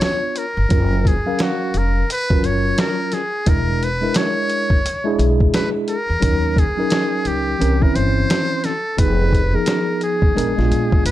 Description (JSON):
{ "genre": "hip hop, jazz-hop", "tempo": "87 BPM", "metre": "4/4", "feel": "swing 62% on 16ths", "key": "unclear", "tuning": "A4 = 442 Hz", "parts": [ { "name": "trumpet with metal mute", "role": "melody", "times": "0.0-11.1 s", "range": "Gb4 to Db5", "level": "-22 LUFS", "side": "equal", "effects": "none" }, { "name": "mellow tine electric piano", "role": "accompaniment", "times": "0.0-11.1 s", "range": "E3 to F5", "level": "-22 LUFS", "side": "equal", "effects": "medium stereo tremolo" }, { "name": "trip hop sampler-style drum kit", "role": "drums", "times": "0.0-11.1 s", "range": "hi-hat, kick drum, snare drum", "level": "-19 LUFS", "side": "equal", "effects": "none" }, { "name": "upright bass", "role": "bass", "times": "0.6-11.1 s", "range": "E1 to Bb2", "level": "-20 LUFS", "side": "equal", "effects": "none" } ], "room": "studio reverb", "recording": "none", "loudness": "-16 LUFS", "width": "side -14 dB against mid", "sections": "0.0-11.1 A section", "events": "none", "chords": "0.0 Db7b9; 0.7 Gbmaj7; 3.5 E7#11; 6.2 Ebm7; 7.6 C7b9; 9.0 Fm7b5; 10.4 Bb7b9" }